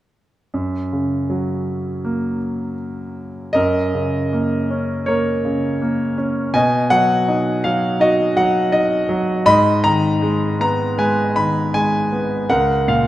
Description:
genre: classical, lyrical solo piano.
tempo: 80 BPM.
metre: 4/4.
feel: rubato.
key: F# major.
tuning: A4 = 439 Hz.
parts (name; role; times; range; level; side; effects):
clear concert grand piano; solo; 0.5-13.1 s; C#2 to B5; -16 LUFS; equal; none.
room: moderate concert hall reverb, RT60 2.4 s.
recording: none.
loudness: -16 LUFS.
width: side -14 dB against mid.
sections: 0.5-3.5 A section; 3.5-13.1 B section.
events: none.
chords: 0.5 F#; 6.5 B; 9.5 G#madd9; 12.5 F#/C#.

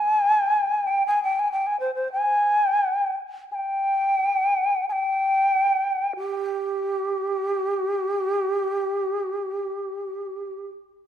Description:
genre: japanese traditional, Japanese chamber music.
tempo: free time.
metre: none.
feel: none.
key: unclear.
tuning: A4 = 437 Hz.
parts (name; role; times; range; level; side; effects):
mellow long shakuhachi; melody; 0.0-10.7 s; G4 to Ab5; -21 LUFS; equal; none.
koto; accompaniment; 0.0-1.4 s; G3; -62 LUFS; right 6 dB; none.
room: moderate scoring stage reverb, RT60 1.8 s.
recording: minimal, uncompressed stereo recording.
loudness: -21 LUFS.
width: side -10 dB against mid.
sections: 0.0-11.1 A section.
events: none.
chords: none.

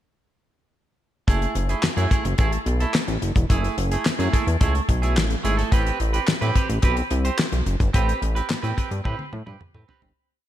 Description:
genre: early-eighties boogie funk.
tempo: 108 BPM.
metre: 4/4.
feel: straight.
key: unclear.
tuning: A4 = 440 Hz.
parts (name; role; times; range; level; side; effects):
clean electric guitar; riff; 1.3-10.1 s; A3 to C5; -27 LUFS; right 4 dB; lush chorus.
chorused synth bass; bass; 1.3-10.1 s; E1 to A2; -23 LUFS; equal; none.
damped 70s drum kit; drums; 1.3-10.2 s; handclaps, hi-hat, kick drum, snare drum, toms; -22 LUFS; left 1 dB; none.
room: light reverb, small room ambience.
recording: none.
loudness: -20 LUFS.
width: side -12 dB against mid.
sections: 1.3-10.2 breakdown.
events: fade-out 7.9-10.2; drum fill 9.1-10.2.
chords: 1.3 F#m9; 5.7 Am9.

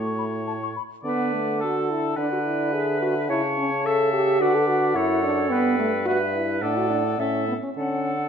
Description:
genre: quick classical-period movement for wind quintet.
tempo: 107 BPM.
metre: 4/4.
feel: straight.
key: D major.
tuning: A4 = 440 Hz.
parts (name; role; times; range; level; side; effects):
clear oboe; second line; 0.0-8.3 s; A4 to E5; -30 LUFS; left 3 dB; none.
clear clarinet; accompaniment; 0.0-8.3 s; F#4 to F#5; -29 LUFS; right 9 dB; none.
warm French horn; accompaniment; 0.0-8.1 s; A3 to A4; -25 LUFS; equal; none.
mellow bassoon; bass; 0.0-8.3 s; F#2 to D3; -27 LUFS; right 2 dB; none.
mellow hollow silver concert flute; melody; 0.2-8.3 s; E5 to C#6; -30 LUFS; left 9 dB; none.
room: moderate recital hall reverb, RT60 1.4 s.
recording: nothing above 7.9 kHz.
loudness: -21 LUFS.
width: side -7 dB against mid.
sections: 0.0-8.3 A section.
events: none.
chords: 0.0 A; 1.0 D; 2.2 E5/D; 3.3 A/C#; 4.4 D; 5.5 Em/G; 6.6 D/A; 7.2 A; 7.8 D.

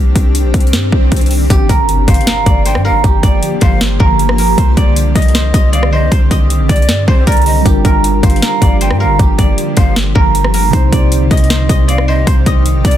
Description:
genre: hip hop, trap.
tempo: 156 BPM.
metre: 4/4.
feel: half-time.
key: G minor.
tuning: A4 = 442 Hz.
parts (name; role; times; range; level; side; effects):
granular cloud pad; sustained chords; 0.0-13.0 s; D3 to G4; -19 LUFS; equal; built-in reverb.
warm 808-style bass; bass; 0.0-13.0 s; G1 to G2; -13 LUFS; equal; none.
swell and impact; sound effects; 0.1-3.0 s; none; -24 LUFS; equal; none.
trap drum kit; drums; 0.2-13.0 s; hi-hat, kick drum, rim click, snare drum; -12 LUFS; equal; overdrive.
guzheng; melody; 1.5-13.0 s; G4 to Eb5; -17 LUFS; right 4 dB; low-pass filter.
breathy large pan pipes; second line; 2.1-13.0 s; C5 to G5; -22 LUFS; left 4 dB; tape echo.
mellow tine electric piano; accompaniment; 7.6-13.0 s; C3 to C5; -18 LUFS; right 1 dB; medium stereo tremolo, low-pass filter.
room: little or no reverb.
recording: dense, heavily limited modern master.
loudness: -9 LUFS.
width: side -11 dB against mid.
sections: 0.0-1.5 A section; 1.5-13.0 B section.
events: swell 0.1-1.5; impact 1.5-3.0.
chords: 0.0 Cmadd9; 1.5 Gm7; 4.6 Cmadd9; 7.7 Gm7; 10.7 Cmadd9.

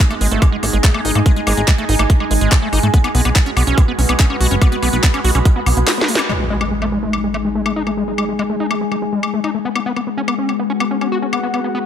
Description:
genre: psychedelic trance.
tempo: 143 BPM.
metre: 4/4.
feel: straight.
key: G# phrygian.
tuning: A4 = 440 Hz.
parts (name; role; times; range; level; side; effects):
overtone-sweeping drone; sustained chords; 0.0-11.9 s; G#3; -23 LUFS; left 4 dB; chorus, built-in reverb, sidechain pumping.
overdriven acid bass; riff; 0.0-11.8 s; G#3 to F#4; -22 LUFS; moving between left 5 dB and right 5 dB; distortion, auto-pan, cassette tape, sidechain pumping, tape echo.
electronic kick drum; drums; 0.0-5.5 s; none; -13 LUFS; equal; none.
garage drum kit; drums; 0.0-11.6 s; handclaps, hi-hat, snare drum, woodblock; -21 LUFS; left 2 dB; none.
warbly tape-like pad; texture; 0.0-11.9 s; B3 to B5; -24 LUFS; right 2 dB; chorus, built-in reverb, sidechain pumping.
plucky analog bass; bass; 0.2-5.8 s; F#1 to G#2; -16 LUFS; equal; none.
impact; sound effects; 6.3-8.0 s; none; -25 LUFS; equal; none.
room: light reverb.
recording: none.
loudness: -14 LUFS.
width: side -9 dB against mid.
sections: 0.0-6.3 A section; 6.3-11.9 B section.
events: drop 0.0-6.3; kick drops out 5.9-6.3; drum fill 5.9-6.3; band accent 6.2; impact 6.3-8.0; filter sweep on acid bass 6.3-11.9.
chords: 0.0 G#5; 2.9 B5; 6.3 G#5; 9.7 B5.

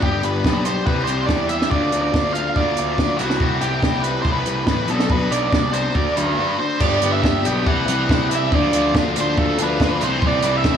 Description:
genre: indie rock.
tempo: 141 BPM.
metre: 4/4.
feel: straight.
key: G major.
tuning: A4 = 439 Hz.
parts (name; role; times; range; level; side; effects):
octave-fuzz lead guitar; melody; 0.0-10.8 s; F#4 to G5; -23 LUFS; right 4 dB; distortion, digital delay.
overdriven electric guitar; riff; 0.0-10.8 s; G2 to G4; -22 LUFS; left 6 dB; none.
fuzz picked electric bass; bass; 0.0-10.8 s; G1 to E2; -23 LUFS; equal; overdrive.
compact cocktail drum kit; drums; 0.0-10.7 s; crash cymbal, hi-hat, kick drum, snare drum; -21 LUFS; right 1 dB; none.
biting overdriven guitar; riff; 6.8-10.8 s; E3 to G4; -26 LUFS; right 7 dB; analog chorus.
room: small room ambience.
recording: none.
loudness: -16 LUFS.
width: side -8 dB against mid.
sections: 0.0-6.8 A section; 6.8-10.8 B section.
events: none.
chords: 0.0 G; 0.9 C; 1.7 Dm; 3.2 Am/C; 4.9 Bm; 6.0 D; 6.8 G; 7.7 C; 8.5 Dm; 10.0 Am/C.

